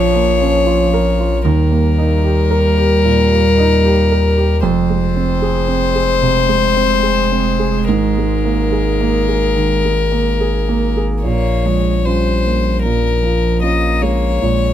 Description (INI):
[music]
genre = neoclassical piano and strings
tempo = 74 BPM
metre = 4/4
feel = uneven beats, rubato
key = Bb dorian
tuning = A4 = 440 Hz
[part]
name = rich violin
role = melody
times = 0.0-14.7 s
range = Bb4 to Eb5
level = -17 LUFS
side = left 6 dB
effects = none
[part]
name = warm cello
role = second line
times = 0.0-14.7 s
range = F3 to Bb3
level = -21 LUFS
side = right 6 dB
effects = none
[part]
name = warm grand piano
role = accompaniment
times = 0.0-14.7 s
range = Eb2 to Bb4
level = -18 LUFS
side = right 5 dB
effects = none
[part]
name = saturated sub bass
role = bass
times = 0.0-14.7 s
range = F1 to Eb2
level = -17 LUFS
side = left 1 dB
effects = none
[sound]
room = light reverb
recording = none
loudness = -12 LUFS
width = side -10 dB against mid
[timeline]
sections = 0.0-11.2 A section; 11.2-14.7 B section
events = none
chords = 0.0 Bbm; 1.5 Eb; 4.6 Fm; 7.9 Absus2; 11.2 Bbm7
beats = 0.68 | 1.46 2.25 3.05 3.85 | 4.64 5.42 6.22 7.03 | 7.88 8.72 9.55 10.39 | 11.23 12.04 12.83 13.63 | 14.43